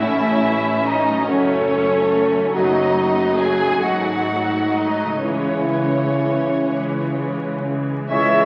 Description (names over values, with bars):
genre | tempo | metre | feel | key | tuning
classical, slow romantic movement for symphony orchestra | 40-48 BPM (dotted quarters) | 6/8 | rubato | C# minor | A4 = 443 Hz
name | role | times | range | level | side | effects
rich chamber violin section | melody | 0.0-8.5 s | C#5 to G#5 | -28 LUFS | equal | none
rich chamber violin section | second line | 0.0-8.5 s | C#4 to E5 | -25 LUFS | equal | none
rich studio viola section | accompaniment | 0.0-8.5 s | E3 to C#4 | -28 LUFS | equal | none
warm French horn section | sustained chords | 0.0-8.5 s | C#4 to A4 | -24 LUFS | equal | none
concert harp | arpeggios | 0.0-8.5 s | F#2 to C#5 | -32 LUFS | equal | none
clear chamber double bass section | bass | 0.0-8.5 s | F#1 to C#2 | -33 LUFS | equal | none
rich chamber cello section | bass | 0.0-8.5 s | F#2 to E3 | -29 LUFS | equal | none
clear clarinet | second line | 8.1-8.5 s | E4 | -31 LUFS | equal | none
concert flute | second line | 8.1-8.5 s | E5 | -23 LUFS | equal | none
warm oboe | second line | 8.1-8.5 s | C#5 | -26 LUFS | equal | none
dark bassoon | accompaniment | 8.1-8.5 s | G#3 | -29 LUFS | equal | none
clear trombone section | sustained chords | 8.1-8.5 s | E3 to G#3 | -29 LUFS | equal | none
warm trumpet | stabs | 8.1-8.5 s | C#5 | -22 LUFS | equal | none
warm tuba | bass | 8.1-8.5 s | C#2 | -29 LUFS | equal | none
room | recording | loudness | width
wet scoring stage reverb, RT60 1.6 s | very old 78 rpm record, vinyl crackle | -19 LUFS | mono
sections
0.0-8.1 A section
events
none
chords
0.0 A; 1.3 F#m; 2.5 D#dim/F#; 3.8 G#7b9; 5.2 C#m